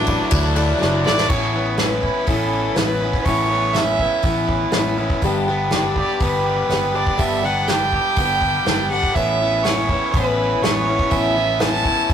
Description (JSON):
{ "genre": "folk rock and heartland rock", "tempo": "122 BPM", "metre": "4/4", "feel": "straight", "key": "unclear", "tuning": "A4 = 440 Hz", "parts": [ { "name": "rich fiddle", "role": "melody", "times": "0.0-12.1 s", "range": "D4 to A5", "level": "-21 LUFS", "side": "right 2 dB", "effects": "none" }, { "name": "electric slide guitar", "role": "second line", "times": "0.0-1.2 s", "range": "F#4 to D5", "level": "-26 LUFS", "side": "right 1 dB", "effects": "none" }, { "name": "picked plugged-in steel-string acoustic guitar", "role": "accompaniment", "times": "0.0-12.1 s", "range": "G2 to G4", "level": "-23 LUFS", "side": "left 3 dB", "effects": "none" }, { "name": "accordion", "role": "sustained chords", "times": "0.0-1.3, 9.2-12.1 s", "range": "F#3 to E4", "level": "-32 LUFS", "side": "equal", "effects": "none" }, { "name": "biting overdriven guitar", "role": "riff", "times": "0.0-12.1 s", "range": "G2 to G4", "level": "-24 LUFS", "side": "right 1 dB", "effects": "spring reverb" }, { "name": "fingered electric bass", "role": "bass", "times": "0.0-12.1 s", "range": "F#1 to D2", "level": "-25 LUFS", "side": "equal", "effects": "none" }, { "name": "unplugged drum kit", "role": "drums", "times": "0.1-12.1 s", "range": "crash cymbal, hi-hat, kick drum, ride cymbal, snare drum", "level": "-22 LUFS", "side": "equal", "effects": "none" } ], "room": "wet booth ambience, RT60 0.2 s", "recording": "rough rehearsal-room recording, tube saturation", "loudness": "-16 LUFS", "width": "side -8 dB against mid", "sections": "0.0-1.3 A section; 1.3-12.1 B section", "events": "drum fill 0.8-1.3", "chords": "0.0 Dadd9; 1.3 Aadd9; 5.2 G; 9.1 Aadd9", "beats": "0.33 0.82 | 1.30 1.79 2.28 2.77 | 3.26 3.75 4.24 4.74 | 5.23 5.72 6.21 6.70 | 7.19 7.68 8.17 8.66 | 9.15 9.64 10.12 10.61 | 11.10 11.59 12.08" }